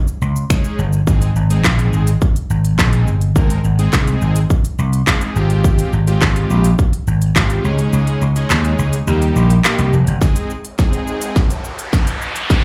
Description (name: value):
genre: dance-pop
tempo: 105 BPM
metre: 4/4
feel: straight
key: Ab major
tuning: A4 = 440 Hz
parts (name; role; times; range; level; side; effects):
- house drum kit; drums; 0.1-12.6 s; finger snaps, handclaps, hi-hat, kick drum, shaker, snare drum; -18 LUFS; equal; none
- vintage slap bass; bass; 0.2-10.2 s; F1 to Eb2; -17 LUFS; equal; sidechain pumping
- big bright polysynth; accompaniment; 0.5-12.6 s; G3 to Bb4; -25 LUFS; equal; sidechain pumping, plate reverb, slapback echo
- riser; sound effects; 10.7-12.6 s; none; -27 LUFS; equal; slapback echo
room: light reverb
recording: live gig heard through the venue's PA, club reverb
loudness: -16 LUFS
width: mono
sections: 0.0-10.2 A section; 10.2-12.6 B section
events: kick muted 7.9-10.2; build-up 10.2-12.6; drum fill 10.2-12.6; riser 10.7-12.6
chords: 0.0 Dbsus2; 1.1 Ab; 5.4 Fmadd9/Ab; 7.6 Dbsus2; 9.1 Eb; 10.2 Ab